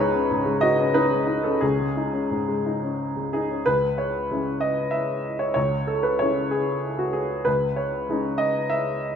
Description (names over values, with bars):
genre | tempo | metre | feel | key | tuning
neoclassical minimalist piano | 88-98 BPM | 3/4 | rubato | C# minor | A4 = 440 Hz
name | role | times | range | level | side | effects
clear upright piano | solo | 0.0-9.2 s | C#2 to E5 | -21 LUFS | equal | none
room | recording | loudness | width
moderate scoring stage reverb, RT60 1.9 s | minimal, uncompressed stereo recording | -21 LUFS | side -7 dB against mid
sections
0.0-3.6 A section; 3.6-9.2 B section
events
none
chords
0.0 G#sus4/C#; 3.6 C#m; 7.5 G#sus4/C#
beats
0.30 0.95 | 1.62 2.30 2.98 | 3.65 4.29 4.92 | 5.56 6.20 6.83 | 7.46 8.09 8.71